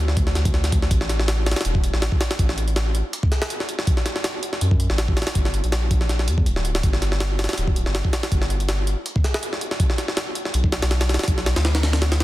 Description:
drum and bass, jungle; 162 BPM; 4/4; swing 54% on 16ths; A4 = 439 Hz
soft dub sub bass; bass; 0.0-12.2 s; D1 to G#2; -21 LUFS; equal; tube saturation
jungle sampler-style drum kit; drums; 0.1-12.2 s; hi-hat, kick drum, snare drum; -21 LUFS; equal
little or no reverb; dense, heavily limited modern master; -19 LUFS; side -16 dB against mid
0.0-12.2 A section

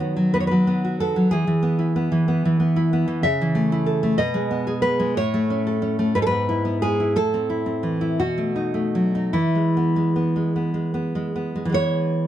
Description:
romantic piece for solo classical guitar; 48-65 BPM (dotted quarters); 6/8; rubato; E major; A4 = 438 Hz
nylon-string guitar; solo; 0.0-12.3 s; G#2 to E5; -19 LUFS; equal
moderate small room reverb, RT60 0.5 s; dark, warm production; -19 LUFS; side -11 dB against mid
0.0-11.7 A section
0.0 B/D#; 1.3 E; 3.2 A/C#; 4.2 G#m/B; 5.2 A; 6.2 E/G#; 7.2 Am; 8.2 B7; 9.4 E

